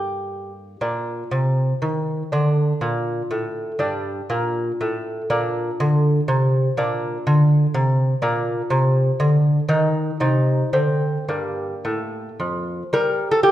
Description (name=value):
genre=classical, baroque-style dance for lute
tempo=105-126 BPM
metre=3/4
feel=rubato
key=Bb major, G minor from 6.8 s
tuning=A4 = 441 Hz
part: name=lute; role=solo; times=0.0-13.5 s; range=F2 to Bb4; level=-18 LUFS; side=equal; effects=none
room=wet recital hall reverb, RT60 1.4 s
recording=recorded in a church or concert hall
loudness=-18 LUFS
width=side -13 dB against mid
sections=0.8-12.9 A section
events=none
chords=0.0 Gm; 0.8 Bb; 3.8 Gm; 5.3 Bbadd9; 9.7 N.C.; 10.2 Cm; 10.7 Csus2/D; 11.3 Gm